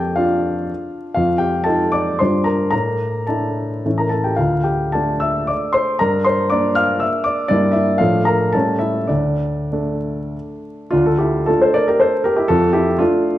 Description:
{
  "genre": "classical, romantic triple-time dance for piano with dotted rhythms",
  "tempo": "93-130 BPM",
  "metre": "3/4",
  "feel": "rubato",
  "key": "D minor",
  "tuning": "A4 = 439 Hz",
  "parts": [
    { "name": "warm baby grand piano", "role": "solo", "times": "0.0-13.4 s", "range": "D2 to F6", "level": "-15 LUFS", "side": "equal", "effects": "none" }
  ],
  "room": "wet recital hall reverb, RT60 1.4 s",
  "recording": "vinyl crackle",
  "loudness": "-15 LUFS",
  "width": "side -14 dB against mid",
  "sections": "0.0-10.9 A section; 10.9-13.4 A section",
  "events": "none",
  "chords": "0.0 Dm/F; 1.2 F7; 2.2 Gm7; 2.7 Asus4; 3.9 A; 4.4 Dm; 6.0 Gm; 7.5 Edim/G; 8.0 Dm/A; 8.5 A7; 9.1 D5; 10.9 Dm; 12.5 Dm/F",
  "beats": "0.18 0.69 | 1.17 1.66 2.20 | 2.72 3.28 3.86 | 4.38 4.93 5.48 | 6.01 6.51 7.02 | 7.49 8.00 8.54 | 9.10 9.72 10.34 | 10.92 11.48 12.01 | 12.49 13.00"
}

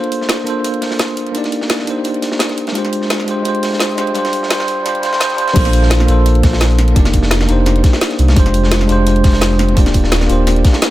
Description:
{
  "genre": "liquid drum and bass",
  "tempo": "171 BPM",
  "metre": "4/4",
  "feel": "swing 53% on 16ths",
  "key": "Bb major",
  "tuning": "A4 = 441 Hz",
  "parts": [
    { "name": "bell-like tine electric piano", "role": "accompaniment", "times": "0.0-10.9 s", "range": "G3 to D5", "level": "-16 LUFS", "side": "right 1 dB", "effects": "fast stereo tremolo, dub echo" },
    { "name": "drum and bass drum kit", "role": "drums", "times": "0.0-10.9 s", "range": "crash cymbal, hi-hat, snare drum", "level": "-20 LUFS", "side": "equal", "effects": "high-pass filter on perc, high-pass filter on hats, high-pass filter on snare, high-pass filter on cymbals, high-pass filter on room" },
    { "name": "crunchy breakbeat drum kit", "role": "drums", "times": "0.1-10.9 s", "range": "hi-hat, snare drum", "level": "-24 LUFS", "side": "equal", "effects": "high-pass filter on hats, high-pass filter on snare, high-pass filter on room, dub echo" },
    { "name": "sub bass with octave", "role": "bass", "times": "5.6-10.6 s", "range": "Eb1 to C2", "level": "-13 LUFS", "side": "equal", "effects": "none" },
    { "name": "electronic kick drum", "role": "drums", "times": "5.6-10.7 s", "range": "none", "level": "-11 LUFS", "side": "equal", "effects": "none" }
  ],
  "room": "moderate spring reverb, RT60 1.5 s, digital ambience",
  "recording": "echo-heavy mix, high-pass filter",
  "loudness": "-12 LUFS",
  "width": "side -15 dB against mid",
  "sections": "0.0-5.6 A section; 5.6-10.9 B section",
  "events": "build-up 0.0-5.6; drop 5.6-10.9",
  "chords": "0.0 Bbmaj9; 1.3 Cm9/Bb; 2.8 Fm69/Ab; 4.2 G7sus4; 5.6 Bbmaj9; 7.0 F13sus4; 8.4 Fm69; 9.8 Ebmaj13",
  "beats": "0.29 0.65 1.00 | 1.35 1.70 2.05 2.40 | 2.75 3.10 3.45 3.80 | 4.15 4.50 4.86 5.21 | 5.56 5.91 6.26 6.61 | 6.96 7.31 7.66 8.01 | 8.37 8.72 9.07 9.42 | 9.77 10.12 10.47 10.82"
}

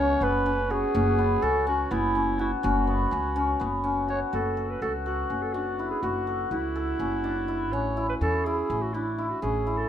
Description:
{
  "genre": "contemporary instrumental, chamber music in an uneven meter",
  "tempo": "248 BPM (eighths)",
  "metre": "7/8",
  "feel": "straight",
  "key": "F# minor",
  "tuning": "A4 = 441 Hz",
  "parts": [
    { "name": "growling clarinet", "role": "melody", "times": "0.0-9.9 s", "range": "E4 to C#5", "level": "-30 LUFS", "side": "right 4 dB", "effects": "none" },
    { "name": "hammered dulcimer", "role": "arpeggios", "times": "0.0-9.9 s", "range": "B3 to A4", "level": "-27 LUFS", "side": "left 2 dB", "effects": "none" },
    { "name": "upright bass", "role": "bass", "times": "0.0-9.8 s", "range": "F#1 to E2", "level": "-30 LUFS", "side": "equal", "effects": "none" }
  ],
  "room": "moderate studio reverb, RT60 0.5 s",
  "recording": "none",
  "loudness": "-24 LUFS",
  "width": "side -10 dB against mid",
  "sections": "0.0-4.3 A section; 4.3-9.9 B section",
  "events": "none",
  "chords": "0.0 F#5; 4.3 F#m7; 7.7 A",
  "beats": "0.22 0.46 0.70 | 0.94 1.19 1.43 1.67 1.91 2.15 2.40 | 2.64 2.88 3.12 3.36 3.60 3.85 4.09 | 4.33 4.57 4.82 5.06 5.30 5.54 5.79 | 6.03 6.27 6.51 6.75 7.00 7.24 7.48 | 7.72 7.97 8.21 8.45 8.69 8.94 9.18 | 9.42 9.66"
}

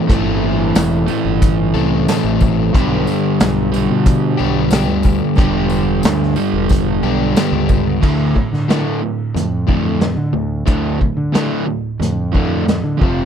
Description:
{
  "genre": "classic rock",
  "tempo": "91 BPM",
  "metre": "4/4",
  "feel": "straight",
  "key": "D dorian",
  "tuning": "A4 = 441 Hz",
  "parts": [
    { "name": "overdriven semi-hollow guitar", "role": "riff", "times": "0.0-13.2 s", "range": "D2 to A4", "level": "-20 LUFS", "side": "left 14 dB", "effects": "none" },
    { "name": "overdriven semi-hollow guitar", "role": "riff", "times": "0.0-13.2 s", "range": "D2 to A3", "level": "-19 LUFS", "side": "right 10 dB", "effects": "none" },
    { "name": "growling fingered electric bass", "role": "bass", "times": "0.1-13.2 s", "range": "E1 to D3", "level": "-20 LUFS", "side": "equal", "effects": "overdrive" },
    { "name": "vintage drum kit", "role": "drums", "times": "0.1-13.2 s", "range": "crash cymbal, hi-hat, kick drum, snare drum", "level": "-18 LUFS", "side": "equal", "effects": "none" },
    { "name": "tambourine", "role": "percussion", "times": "0.1-7.8 s", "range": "none", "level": "-36 LUFS", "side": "left 11 dB", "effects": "none" }
  ],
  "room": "light reverb",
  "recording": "none",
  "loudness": "-13 LUFS",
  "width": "side -8 dB against mid",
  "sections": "0.0-8.0 A section; 8.0-13.2 B section",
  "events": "none",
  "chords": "0.0 Am7; 2.7 G/B; 8.0 Dm",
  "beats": "| 0.09 0.76 1.42 2.08 | 2.74 3.40 4.06 4.72 | 5.38 6.04 6.71 7.37 | 8.03 8.69 9.36 10.02 | 10.68 11.35 12.01 12.68"
}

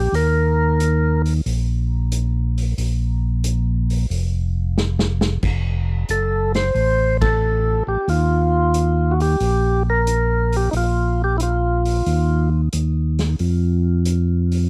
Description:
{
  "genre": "soul jazz organ trio",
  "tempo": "90 BPM",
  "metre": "4/4",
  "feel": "swing 69% on 8ths",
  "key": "unclear",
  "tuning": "A4 = 440 Hz",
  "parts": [
    { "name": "percussive tonewheel organ", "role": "melody", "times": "0.0-1.2, 6.1-12.5 s", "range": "Eb4 to C5", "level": "-23 LUFS", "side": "equal", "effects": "slow rotary speaker, slapback echo" },
    { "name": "tonewheel organ", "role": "bass", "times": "0.0-14.7 s", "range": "F1 to F2", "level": "-21 LUFS", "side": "equal", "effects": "overdrive, slow rotary speaker" },
    { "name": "vintage drum kit", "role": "drums", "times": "0.1-14.6 s", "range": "crash cymbal, hi-hat, kick drum, ride cymbal, snare drum", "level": "-30 LUFS", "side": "equal", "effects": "none" }
  ],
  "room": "little or no reverb",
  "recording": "none",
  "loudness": "-19 LUFS",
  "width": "mono",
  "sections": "0.0-14.7 A section",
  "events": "drum fill 4.8-5.4; band accent 7.1-7.4",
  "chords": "0.0 Eb5; 2.8 Bb5; 5.4 F; 8.1 Ebadd9; 10.7 Bb5; 12.1 N.C.; 13.4 F5",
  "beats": "| 0.13 0.79 1.45 2.12 | 2.78 3.44 4.10 4.76 | 5.43 6.09 6.75 7.41 | 8.08 8.74 9.40 10.07 | 10.73 11.40 12.06 12.73 | 13.39 14.06"
}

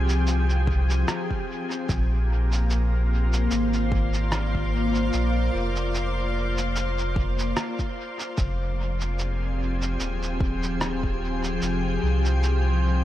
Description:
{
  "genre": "ambient dub",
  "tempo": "74 BPM",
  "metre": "4/4",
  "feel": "swing 56% on 16ths",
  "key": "F dorian",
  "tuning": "A4 = 440 Hz",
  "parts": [
    { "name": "soft additive organ-like pad", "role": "sustained chords", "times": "0.0-13.0 s", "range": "F3 to D5", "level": "-27 LUFS", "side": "left 1 dB", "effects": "ensemble chorus, built-in reverb" },
    { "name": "warm sub bass", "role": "bass", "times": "0.0-13.0 s", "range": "Eb1 to C2", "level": "-24 LUFS", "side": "equal", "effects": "none" },
    { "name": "electronic shaker and rim click", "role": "drums", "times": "0.1-12.6 s", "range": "none", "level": "-33 LUFS", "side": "right 1 dB", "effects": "dub echo" },
    { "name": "electronic kick drum", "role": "drums", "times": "0.7-11.2 s", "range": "none", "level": "-28 LUFS", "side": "equal", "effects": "none" }
  ],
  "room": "digital ambience",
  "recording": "vinyl crackle",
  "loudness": "-22 LUFS",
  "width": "side -13 dB against mid",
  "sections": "0.0-13.0 A section",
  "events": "none",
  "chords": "0.0 Fm; 1.9 Bb7; 8.4 Fm7",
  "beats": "0.27 1.08 | 1.89 2.70 3.51 4.32 | 5.13 5.95 6.76 7.57 | 8.38 9.19 10.00 10.81 | 11.62 12.43"
}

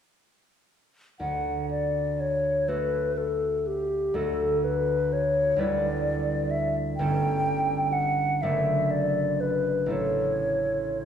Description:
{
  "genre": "classical, romantic duo for flute and harp",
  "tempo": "41 BPM (dotted quarters)",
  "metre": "6/8",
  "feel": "uneven beats, rubato",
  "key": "D major",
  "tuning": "A4 = 440 Hz",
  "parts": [
    { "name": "mellow hollow silver concert flute", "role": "melody", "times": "1.2-11.1 s", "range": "G4 to G5", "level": "-25 LUFS", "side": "left 2 dB", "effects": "none" },
    { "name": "concert harp", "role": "accompaniment", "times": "1.2-11.1 s", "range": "F#1 to B4", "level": "-28 LUFS", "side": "right 2 dB", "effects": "none" }
  ],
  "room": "wet recital hall reverb, RT60 1.5 s",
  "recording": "heard from further back in the room",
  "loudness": "-24 LUFS",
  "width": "side -8 dB against mid",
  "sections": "1.2-11.1 A section",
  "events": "none",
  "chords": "1.2 D; 5.6 Em7/D; 7.0 A7/G; 8.4 D/F#; 9.9 A",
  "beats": "| 1.19 2.68 | 4.14 5.57 | 6.98 8.42 | 9.91"
}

